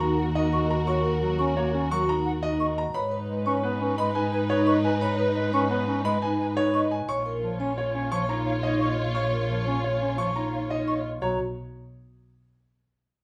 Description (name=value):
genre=classical, minimalist pattern music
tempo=174 BPM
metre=6/4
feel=straight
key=B lydian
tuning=A4 = 440 Hz
part: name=bright concert grand piano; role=melody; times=0.0-11.4 s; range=B4 to C#6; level=-33 LUFS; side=equal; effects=none
part: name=dark clarinet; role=second line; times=0.0-11.0 s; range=F#4 to C#5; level=-36 LUFS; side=equal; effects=none
part: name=dark studio string section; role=sustained chords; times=0.0-11.0 s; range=D#4 to C#5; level=-35 LUFS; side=equal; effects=none
part: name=vibraphone with soft mallets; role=arpeggios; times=0.0-11.4 s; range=D#4 to D#5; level=-32 LUFS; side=equal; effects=none
part: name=rich double bass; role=bass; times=0.0-11.4 s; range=A#1 to G#2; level=-32 LUFS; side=equal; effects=none
part: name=hollow concert flute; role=arpeggios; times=0.2-11.4 s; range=E#5 to C#6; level=-33 LUFS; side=equal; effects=none
part: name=warm bass clarinet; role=accompaniment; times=1.2-11.4 s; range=E#3 to C#4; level=-33 LUFS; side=equal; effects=none
room=moderate large studio reverb, RT60 1.2 s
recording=none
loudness=-26 LUFS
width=mono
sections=0.0-11.2 A section; 11.2-13.2 B section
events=none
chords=0.0 D#m; 2.9 G#m; 7.1 A#m; 11.2 B5